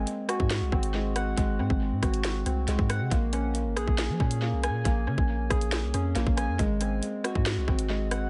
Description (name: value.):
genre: hip hop, drill.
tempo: 138 BPM.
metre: 4/4.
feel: half-time.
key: unclear.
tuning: A4 = 438 Hz.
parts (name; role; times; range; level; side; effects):
soft electric-piano-like synth keys; arpeggios; 0.0-8.3 s; Ab3 to Ab5; -33 LUFS; equal; chorus, tape echo.
long sustained 808-style bass; bass; 0.0-8.3 s; Ab1 to F3; -32 LUFS; equal; none.
drill drum kit; drums; 0.1-8.2 s; hi-hat, kick drum, rim click, snare drum; -32 LUFS; equal; tape echo.
room: little or no reverb.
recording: echo-heavy mix, nothing above 10.8 kHz.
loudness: -27 LUFS.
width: mono.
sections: 0.0-8.3 A section.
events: none.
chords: 0.0 Ab7; 3.1 Bbm7; 6.6 Ab7.